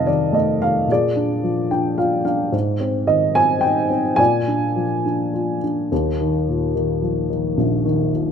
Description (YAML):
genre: classical, lyrical solo piano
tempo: 108 BPM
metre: 3/4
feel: rubato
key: unclear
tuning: A4 = 440 Hz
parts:
  - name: dark upright piano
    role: solo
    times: 0.0-8.3 s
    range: Bb1 to A5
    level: -17 LUFS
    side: equal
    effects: none
room: light reverb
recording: close, detailed microphones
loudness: -17 LUFS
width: side -7 dB against mid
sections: 0.0-8.3 A section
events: upright piano fill 1.4-2.5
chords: 0.0 F7; 0.9 Bb7; 2.5 Abmaj7; 4.2 Bb7; 5.9 Ebsus2